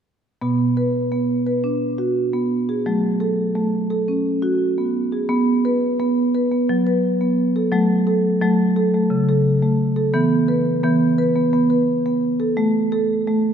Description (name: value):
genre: world meditative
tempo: 173 BPM (eighths)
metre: 7/8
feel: straight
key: unclear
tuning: A4 = 438 Hz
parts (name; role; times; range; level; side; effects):
- marimba with medium mallets; arpeggios; 0.4-13.5 s; B2 to B4; -17 LUFS; right 1 dB; none
room: wet church reverb, RT60 2.7 s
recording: none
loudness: -17 LUFS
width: side -8 dB against mid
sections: 0.4-5.3 A section; 5.3-13.5 B section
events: none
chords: 0.4 Bm; 2.9 F#m; 5.3 B5; 7.7 F#m; 10.1 E5; 12.6 A5